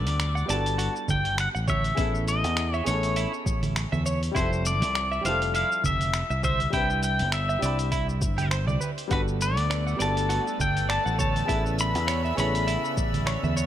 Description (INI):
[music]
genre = sunset chillout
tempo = 101 BPM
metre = 4/4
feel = swing 56% on 16ths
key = unclear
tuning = A4 = 439 Hz
[part]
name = pedal steel guitar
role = melody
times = 0.0-12.9 s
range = B4 to B5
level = -28 LUFS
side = left 1 dB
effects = digital delay
[part]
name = dark baby grand piano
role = accompaniment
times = 0.0-13.7 s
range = C#3 to B5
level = -33 LUFS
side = moving between left 5 dB and right 1 dB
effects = auto-pan, digital delay
[part]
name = fingered electric bass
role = bass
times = 0.0-13.7 s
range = F1 to E2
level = -28 LUFS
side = equal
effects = none
[part]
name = dusty soul sampler-style drum kit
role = drums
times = 0.1-13.7 s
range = congas, finger snaps, hi-hat, shaker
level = -31 LUFS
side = right 3 dB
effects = overdrive
[part]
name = twelve-string electric guitar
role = arpeggios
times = 0.4-13.7 s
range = E4 to F#5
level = -34 LUFS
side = right 3 dB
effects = digital delay
[part]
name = electronic kick drum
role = drums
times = 1.1-13.1 s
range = none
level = -30 LUFS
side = equal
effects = overdrive
[part]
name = lush unison pad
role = sustained chords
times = 9.1-13.7 s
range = C#3 to E5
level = -36 LUFS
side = left 1 dB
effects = chorus
[part]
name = drifting glass-harmonics texture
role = texture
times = 9.8-13.7 s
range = D5 to E6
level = -39 LUFS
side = left 2 dB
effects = chorus, built-in reverb
[sound]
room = light reverb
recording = none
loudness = -23 LUFS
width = side -11 dB against mid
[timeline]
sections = 0.0-13.7 A section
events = none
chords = 0.0 Gmaj9; 1.7 Amaj9; 4.4 Fmaj9; 6.7 Cmaj9; 9.1 Gmaj9; 11.2 Amaj9